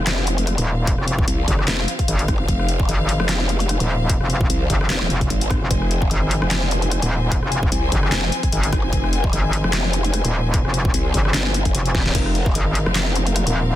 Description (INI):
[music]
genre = heavy wobble dubstep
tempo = 149 BPM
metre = 4/4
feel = swing 55% on 16ths, half-time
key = F minor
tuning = A4 = 438 Hz
[part]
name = rich symphonic string section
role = sustained chords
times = 0.0-13.8 s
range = F3 to Ab5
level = -27 LUFS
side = left 2 dB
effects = sidechain pumping
[part]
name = growl bass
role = bass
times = 0.0-13.4 s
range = Eb1 to C2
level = -21 LUFS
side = equal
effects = chorus, overdrive
[part]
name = dubstep drum kit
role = drums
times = 0.1-13.5 s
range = crash cymbal, handclaps, hi-hat, rim click, snare drum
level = -24 LUFS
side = left 1 dB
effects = none
[part]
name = metallic wobble bass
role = bass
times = 0.6-13.8 s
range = Eb1 to Ab1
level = -20 LUFS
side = equal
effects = chorus, overdrive
[part]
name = electronic kick drum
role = drums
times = 0.9-12.5 s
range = none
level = -21 LUFS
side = equal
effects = none
[sound]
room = little or no reverb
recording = dense, heavily limited modern master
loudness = -17 LUFS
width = side -13 dB against mid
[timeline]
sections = 0.0-13.8 A section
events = drum fill 11.9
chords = 0.0 F5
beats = 0.07 0.47 | 0.87 1.28 1.68 2.08 | 2.48 2.89 3.29 3.69 | 4.09 4.50 4.90 5.30 | 5.71 6.11 6.51 6.91 | 7.32 7.72 8.12 8.53 | 8.93 9.33 9.73 10.14 | 10.54 10.94 11.34 11.75 | 12.15 12.55 12.96 13.36